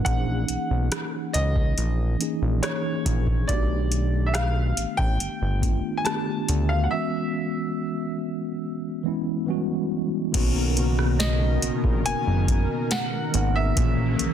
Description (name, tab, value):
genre	contemporary R&B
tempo	70 BPM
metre	4/4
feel	straight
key	B major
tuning	A4 = 436 Hz
part	clear grand piano	melody	0.0-14.3 s	C#5 to A5	-30 LUFS	equal	tape echo
part	mellow tine electric piano	accompaniment	0.0-14.3 s	C#3 to G#4	-27 LUFS	equal	medium stereo tremolo
part	fat analog bass	bass	0.0-14.3 s	F#1 to D2	-24 LUFS	equal	none
part	booming analog drum machine	drums	0.1-14.3 s	crash cymbal, hi-hat, kick drum, rim click, snare drum	-25 LUFS	equal	soft clipping on snare
part	warm analog pad	sustained chords	10.3-14.3 s	B2 to A#4	-31 LUFS	equal	chorus
room	digital ambience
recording	dense, heavily limited modern master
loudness	-22 LUFS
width	side -9 dB against mid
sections	0.0-10.3 A section; 10.3-14.3 B section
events	break 6.9-10.3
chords	0.1 F#13/A#; 3.5 B7alt; 6.9 E6; 10.3 Bmaj7; 13.8 F#13/A#